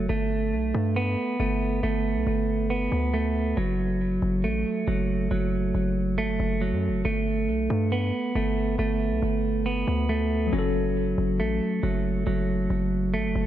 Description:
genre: hip hop.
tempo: 138 BPM.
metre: 4/4.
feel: half-time.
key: F# phrygian.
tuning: A4 = 440 Hz.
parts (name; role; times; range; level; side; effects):
clean electric guitar; arpeggios; 0.0-13.5 s; F#3 to B3; -25 LUFS; right 4 dB; spring reverb, low-pass filter, ping-pong delay.
hard-hitting 808-style bass; bass; 0.0-13.5 s; F#1 to G2; -27 LUFS; left 1 dB; none.
mellow tine electric piano; accompaniment; 10.5-13.5 s; F#3 to A4; -32 LUFS; left 10 dB; medium stereo tremolo, low-pass filter.
room: light reverb.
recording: none.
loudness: -23 LUFS.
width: side -12 dB against mid.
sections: 0.0-13.5 A section.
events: none.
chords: 0.1 Gadd9; 3.6 F#m; 7.0 Gadd9; 10.5 F#m.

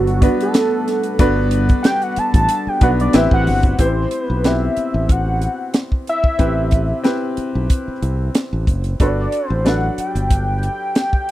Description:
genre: lush 1970s-style soul.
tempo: 92 BPM.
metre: 4/4.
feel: swing 54% on 16ths.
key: A dorian.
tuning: A4 = 440 Hz.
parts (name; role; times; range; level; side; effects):
fat analog lead; melody; 0.0-11.3 s; F#4 to A5; -20 LUFS; right 1 dB; chorus.
clear grand piano; accompaniment; 0.0-11.3 s; F#3 to F#5; -22 LUFS; left 1 dB; none.
glass harmonica; sustained chords; 0.0-3.8 s; G3 to F#5; -28 LUFS; left 2 dB; none.
modern bright fingered electric bass; bass; 0.0-10.7 s; F#1 to C2; -19 LUFS; equal; none.
tight funk drum kit; drums; 0.1-11.3 s; hi-hat, kick drum, snare drum; -15 LUFS; equal; none.
room: little or no reverb.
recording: dry, close 1970s-style studio recording.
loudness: -15 LUFS.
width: side -14 dB against mid.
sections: 0.0-3.8 A section; 3.8-11.3 B section.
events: analog synth lead solo 0.0-3.8.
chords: 0.0 Gmaj7; 3.1 Am9; 9.0 Gmaj7.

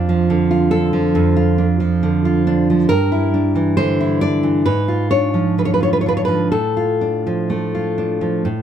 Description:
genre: romantic piece for solo classical guitar.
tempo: 61-70 BPM.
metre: 4/4.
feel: rubato.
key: D minor.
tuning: A4 = 440 Hz.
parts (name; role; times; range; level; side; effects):
nylon-string guitar; solo; 0.0-8.6 s; F2 to D5; -14 LUFS; right 1 dB; none.
room: light reverb.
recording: close, detailed microphones.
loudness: -15 LUFS.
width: side -9 dB against mid.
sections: 0.0-8.6 A section.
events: none.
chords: 0.0 Dm/F; 2.9 Em7b5/G; 4.7 G#dim7; 6.5 Dm/A.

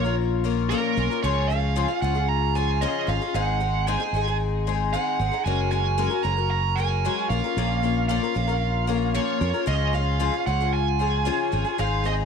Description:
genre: folk rock and heartland rock.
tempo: 114 BPM.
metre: 4/4.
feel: straight.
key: unclear.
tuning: A4 = 440 Hz.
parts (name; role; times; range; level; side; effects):
biting lead guitar; melody; 0.0-12.1 s; Bb4 to Bb5; -27 LUFS; right 15 dB; overdrive, tape echo.
picked twelve-string acoustic guitar; accompaniment; 0.0-12.2 s; Ab2 to Bb4; -26 LUFS; left 14 dB; none.
fingered electric bass; bass; 0.0-12.2 s; Gb1 to F2; -25 LUFS; equal; none.
room: small room ambience.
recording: 1960s-style stereo with parts hard left and right.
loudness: -21 LUFS.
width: side -6 dB against mid.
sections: 0.0-12.2 A section.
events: none.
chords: 0.0 Bbm; 1.2 Db; 3.3 Ab; 5.5 Gbadd9; 7.3 Bbm; 9.7 Db.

